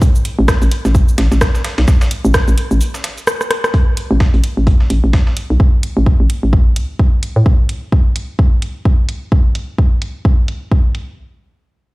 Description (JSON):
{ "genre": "minimal techno", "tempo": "129 BPM", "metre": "4/4", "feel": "swing 58% on 16ths", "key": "A minor", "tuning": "A4 = 443 Hz", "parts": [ { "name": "dusty soul sampler-style drum kit", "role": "drums", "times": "0.0-5.5 s", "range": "hi-hat, snare drum", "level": "-28 LUFS", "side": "equal", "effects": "high-pass filter on hats, high-pass filter on snare" }, { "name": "electronic kick drum", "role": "drums", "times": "0.0-10.8 s", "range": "none", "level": "-12 LUFS", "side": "equal", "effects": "none" }, { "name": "house drum kit", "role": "drums", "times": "0.0-11.1 s", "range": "cabasa, hi-hat, rim click", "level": "-21 LUFS", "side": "equal", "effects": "low-pass filter on perc, low-pass filter on hats, low-pass filter on snare" }, { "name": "hollow knocking FM bass", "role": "bass", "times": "0.4-7.4 s", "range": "A1 to A2", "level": "-12 LUFS", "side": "equal", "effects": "sidechain pumping" } ], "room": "digital ambience", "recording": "played on a big sound system in a bare room, large studio reverb", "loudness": "-12 LUFS", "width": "side -22 dB against mid", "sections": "0.0-3.7 A section; 3.7-11.2 B section", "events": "drop 0.0-3.7; break 2.8-3.7; drum fill 3.4-3.7; filter sweep on drum 3.7-11.2", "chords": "none" }